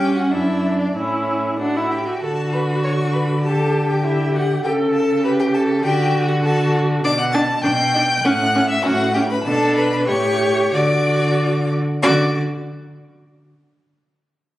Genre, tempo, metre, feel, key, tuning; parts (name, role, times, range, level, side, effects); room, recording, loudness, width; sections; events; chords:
quick classical-period movement for string quartet; 91-101 BPM; 2/4; rubato; D major; A4 = 441 Hz
rich violin; melody; 0.0-12.4 s; C#5 to A6; -26 LUFS; left 3 dB
rich violin; second line; 0.0-12.4 s; C#4 to A5; -22 LUFS; left 1 dB
warm viola; accompaniment; 0.0-12.4 s; C#4 to A4; -21 LUFS; equal
rich cello; bass; 0.0-12.4 s; F#2 to D3; -21 LUFS; right 1 dB
moderate recital hall reverb, RT60 1.6 s; recorded on a phone in the room, club reverb, compression; -16 LUFS; side -15 dB against mid
0.0-2.2 A section; 2.2-12.0 B section; 12.0-13.3 C section
0.3 D/F#; 0.9 A; 2.2 D; 3.4 Dadd11; 4.7 A7/C#; 5.8 D; 7.0 G/B; 8.2 A; 9.5 Bm; 10.1 A7; 10.7 D